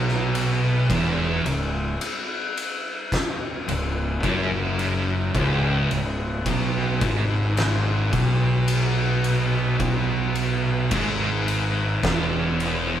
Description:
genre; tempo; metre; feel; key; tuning
stoner and doom metal; 54 BPM; 4/4; straight; C# minor; A4 = 440 Hz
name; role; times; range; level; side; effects
thick fuzz guitar; riff; 0.0-13.0 s; C#2 to B2; -27 LUFS; left 6 dB; distortion
thick fuzz guitar; riff; 0.0-13.0 s; C#2 to B2; -24 LUFS; right 4 dB; distortion
fuzz fingered electric bass; bass; 0.0-13.0 s; C#1 to B1; -28 LUFS; left 1 dB; overdrive
oversized low-tuned drum kit; drums; 0.1-12.9 s; kick drum, ride cymbal, snare drum; -27 LUFS; left 1 dB; none
room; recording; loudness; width
moderate stone room reverb, RT60 1.1 s; band playing live in one room; -20 LUFS; side -10 dB against mid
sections
0.0-13.0 A section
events
none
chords
0.0 C#m

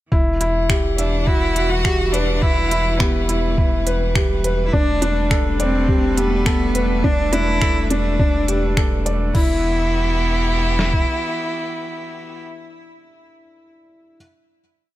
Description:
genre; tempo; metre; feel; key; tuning
piano and strings electronica; 104 BPM; 4/4; straight; E minor; A4 = 440 Hz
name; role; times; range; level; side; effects
bright string quartet; sustained chords; 0.1-12.4 s; E3 to F#5; -28 LUFS; right 1 dB; sidechain pumping
felt-muted upright piano; riff; 0.1-14.2 s; D4 to E5; -23 LUFS; equal; digital delay
round analog bass; bass; 0.1-11.0 s; E1; -22 LUFS; equal; sidechain pumping
lo-fi sampler-style drum kit; drums; 0.1-11.1 s; kick drum, snare drum; -19 LUFS; equal; none
organic electronic drum kit; drums; 0.4-9.5 s; crash cymbal, finger snaps, hi-hat; -26 LUFS; equal; none
rich cello; melody; 1.0-12.4 s; B3 to F#4; -23 LUFS; equal; digital delay
room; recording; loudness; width
light reverb, small room reverb; none; -16 LUFS; side -15 dB against mid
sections
0.1-9.3 drop; 9.3-11.7 final chord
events
drop 0.1-9.3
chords
0.1 Emadd9; 4.7 Gadd9/E; 9.3 Emadd9

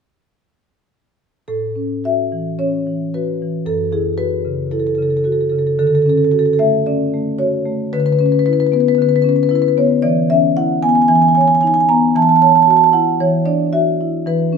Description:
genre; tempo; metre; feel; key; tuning
classical, contemporary piece for solo marimba; 113 BPM; 4/4; rubato; A major; A4 = 440 Hz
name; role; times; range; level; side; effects
marimba with medium hard mallets; solo; 1.5-14.6 s; F#2 to Bb5; -13 LUFS; equal; none
room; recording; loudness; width
wet stone room reverb, RT60 1.0 s; minimal, uncompressed stereo recording; -13 LUFS; side -6 dB against mid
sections
1.5-14.6 A section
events
none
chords
1.5 A6; 3.7 F#m7; 5.8 Dmaj7; 7.9 C#m7/D; 10.0 E5; 11.1 C#sus2/E; 12.2 F#m7/E; 13.2 Dadd9/E

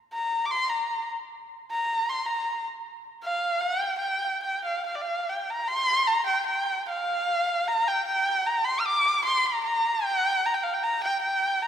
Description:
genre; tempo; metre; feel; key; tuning
chinese traditional; 76 BPM; 4/4; rubato; G yu mode; A4 = 438 Hz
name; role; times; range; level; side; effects
rich erhu; solo; 0.1-11.7 s; D5 to F6; -24 LUFS; equal; none
room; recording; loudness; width
wet church reverb, RT60 2.6 s; recorded in a church or concert hall; -24 LUFS; side -9 dB against mid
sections
0.0-5.7 A section; 5.7-11.7 B section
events
none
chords
none

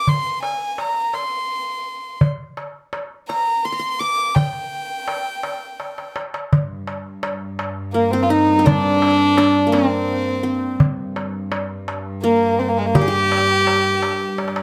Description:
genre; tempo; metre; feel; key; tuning
Arabic maqam ensemble; 56 BPM (dotted quarters); 6/8; straight; G maqam kurd; A4 = 436 Hz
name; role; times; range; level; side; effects
warm violin; melody; 0.0-14.6 s; Ab3 to D6; -22 LUFS; equal; none
darbuka; percussion; 0.1-14.6 s; none; -23 LUFS; equal; none
qanun; second line; 3.3-14.6 s; Bb3 to D6; -24 LUFS; equal; none
rich studio cello section; drone; 6.5-14.6 s; G2; -28 LUFS; equal; none
room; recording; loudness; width
light reverb; close, detailed microphones; -20 LUFS; mono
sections
0.0-6.5 A section; 6.5-14.6 B section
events
drum fill 5.8-6.5, 14.4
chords
none

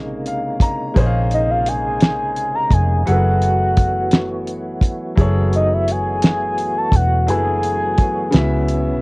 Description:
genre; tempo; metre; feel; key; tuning
slow six-eight R&B; 57 BPM (dotted quarters); 6/8; straight; unclear; A4 = 441 Hz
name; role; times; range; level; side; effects
warm grand piano; accompaniment; 0.0-9.0 s; Db3 to Bb5; -24 LUFS; left 1 dB; cassette tape
percussive tonewheel organ; sustained chords; 0.0-9.0 s; C3 to Gb4; -26 LUFS; right 1 dB; chorus vibrato, slow rotary speaker, cassette tape
vintage muted fingered electric bass; bass; 0.0-9.0 s; Fb1 to Db2; -19 LUFS; equal; none
cloth-damped thuddy drum kit; drums; 0.3-8.8 s; hi-hat, kick drum, snare drum; -15 LUFS; equal; cassette tape
soft octave-layered synth lead; melody; 1.3-9.0 s; Eb5 to Bb5; -20 LUFS; equal; chorus, tremolo, cassette tape
room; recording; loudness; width
light reverb; home recording on cassette; -15 LUFS; side -25 dB against mid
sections
0.0-9.0 A section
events
grand piano fill 0.0-1.0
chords
0.0 Bbm11; 3.1 Gbm11; 8.3 Dbm7

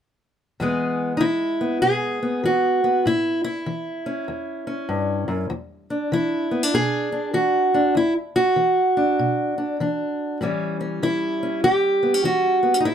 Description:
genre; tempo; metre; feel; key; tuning
acoustic country blues, solo or duo; 98 BPM; 4/4; swing 63% on 8ths; E mixolydian; A4 = 441 Hz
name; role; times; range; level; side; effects
fingerpicked steel-string acoustic guitar; solo; 0.6-12.9 s; E2 to G#4; -19 LUFS; equal; none
room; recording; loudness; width
light reverb; close, detailed microphones; -19 LUFS; side -8 dB against mid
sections
0.6-12.9 A section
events
none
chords
0.6 E; 3.1 A7; 5.5 E7; 10.4 A7

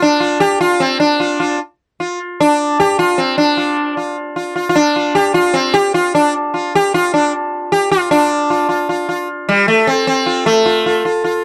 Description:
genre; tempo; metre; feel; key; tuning
indian classical; 152 BPM; 3/4; straight; F raga bhupali; A4 = 445 Hz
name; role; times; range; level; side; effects
sitar; solo; 0.0-11.4 s; G3 to G4; -15 LUFS; equal; none
room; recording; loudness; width
light reverb; dry, close 1970s-style studio recording; -15 LUFS; mono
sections
0.0-8.1 A section; 8.1-11.4 B section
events
none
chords
none

